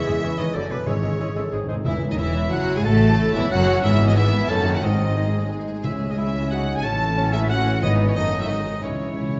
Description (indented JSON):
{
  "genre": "classical, dramatic, fast romantic movement for symphony orchestra",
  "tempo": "182 BPM",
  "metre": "3/4",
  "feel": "straight",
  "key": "C# minor",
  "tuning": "A4 = 440 Hz",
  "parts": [
    { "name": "rich symphonic violin section", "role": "melody", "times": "0.0-9.4 s", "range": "E4 to A5", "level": "-35 LUFS", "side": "equal", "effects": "none" },
    { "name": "clear oboe", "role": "second line", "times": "0.0-9.4 s", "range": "B4 to A5", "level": "-34 LUFS", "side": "equal", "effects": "none" },
    { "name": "warm symphonic violin section", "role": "second line", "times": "0.0-9.4 s", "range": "C#4 to E5", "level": "-37 LUFS", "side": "equal", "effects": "none" },
    { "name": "mellow trombone section", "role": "sustained chords", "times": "0.0-9.4 s", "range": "C#3 to D#4", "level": "-33 LUFS", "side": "equal", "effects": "none" },
    { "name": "warm French horn section", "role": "sustained chords", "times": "0.0-9.4 s", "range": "C#4 to B4", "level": "-33 LUFS", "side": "equal", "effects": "none" },
    { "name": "concert harp", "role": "arpeggios", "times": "0.0-9.4 s", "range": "E2 to G#5", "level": "-34 LUFS", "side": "equal", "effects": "none" },
    { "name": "rich symphonic cello section", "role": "bass", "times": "0.0-9.4 s", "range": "D#2 to E3", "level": "-29 LUFS", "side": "equal", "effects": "none" },
    { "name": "mellow clarinet", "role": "second line", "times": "0.1-1.8 s", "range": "G#4 to B#4", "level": "-38 LUFS", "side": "equal", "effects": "none" },
    { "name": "small flute group", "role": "second line", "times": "0.1-9.4 s", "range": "C#5 to E6", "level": "-36 LUFS", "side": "equal", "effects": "none" },
    { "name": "rich studio viola section", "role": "accompaniment", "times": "0.1-9.4 s", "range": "D#3 to E4", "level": "-33 LUFS", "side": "equal", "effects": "none" },
    { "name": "warm bassoon", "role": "accompaniment", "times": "0.1-9.4 s", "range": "E3 to F#4", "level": "-33 LUFS", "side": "equal", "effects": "none" },
    { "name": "rich symphonic double bass section", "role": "bass", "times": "0.1-9.4 s", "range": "E1 to E2", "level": "-27 LUFS", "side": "equal", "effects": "none" },
    { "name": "timpani", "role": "percussion", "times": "0.9-2.3, 5.8-9.4 s", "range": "G#2 to C#3", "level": "-30 LUFS", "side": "equal", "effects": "none" }
  ],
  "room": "wet recital hall reverb, RT60 1.4 s",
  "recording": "nothing above 7.8 kHz",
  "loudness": "-21 LUFS",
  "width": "mono",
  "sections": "0.0-1.9 A section; 1.9-9.4 B section",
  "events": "timpani fill 1.5-1.9, 8.8-9.4",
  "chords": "0.0 C#m/E; 0.5 D/F#; 0.9 C#m/G#; 1.5 G#; 1.9 C#m/E; 2.9 A6; 3.8 E/G#; 4.5 D#dim/F#; 4.8 G#; 5.8 C#m; 6.8 A6; 7.8 E/G#; 8.2 D#dim/F#; 8.5 G#7; 8.8 C#m",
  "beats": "0.22 0.54 | 0.87 1.20 1.53 | 1.85 2.19 2.52 | 2.85 3.18 3.51 | 3.83 4.16 4.50 | 4.83 5.17 5.50 | 5.84 6.18 6.51 | 6.84 7.17 7.50 | 7.83 8.15 8.49 | 8.83 9.17"
}